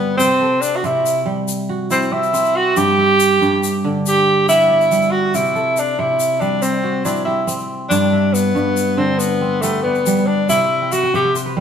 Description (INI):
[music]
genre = west african traditional, West African string and xylophone music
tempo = 93 BPM (dotted quarters)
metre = 12/8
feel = straight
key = unclear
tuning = A4 = 440 Hz
[part]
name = warm tenor saxophone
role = melody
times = 0.0-11.3 s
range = A3 to G4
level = -16 LUFS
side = equal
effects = none
[part]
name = kora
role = arpeggios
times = 0.0-11.6 s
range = G2 to G5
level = -20 LUFS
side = right 1 dB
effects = none
[part]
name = tube shaker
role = percussion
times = 0.2-11.4 s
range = none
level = -28 LUFS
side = left 5 dB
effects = none
[sound]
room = wet stone room reverb, RT60 1.4 s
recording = band playing live in one room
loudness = -14 LUFS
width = side -8 dB against mid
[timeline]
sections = 0.0-11.6 A section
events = tenor saxophone solo 0.0-11.6; kora fill 10.8-11.6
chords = 0.2 C; 2.8 G; 5.3 C; 7.9 G; 10.5 C